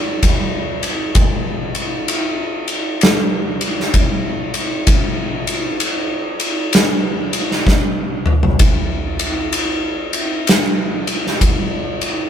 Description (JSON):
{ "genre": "metal", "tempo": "64 BPM", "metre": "4/4", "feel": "swing 64% on 8ths", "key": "none", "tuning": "none", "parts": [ { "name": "oversized low-tuned drum kit", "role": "drums", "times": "0.2-12.2 s", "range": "kick drum, ride cymbal, snare drum, toms", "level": "-15 LUFS", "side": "equal", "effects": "none" } ], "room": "light reverb", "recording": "band playing live in one room", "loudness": "-15 LUFS", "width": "side -9 dB against mid", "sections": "0.0-12.3 A section", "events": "drum fill 7.7-8.6", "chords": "none" }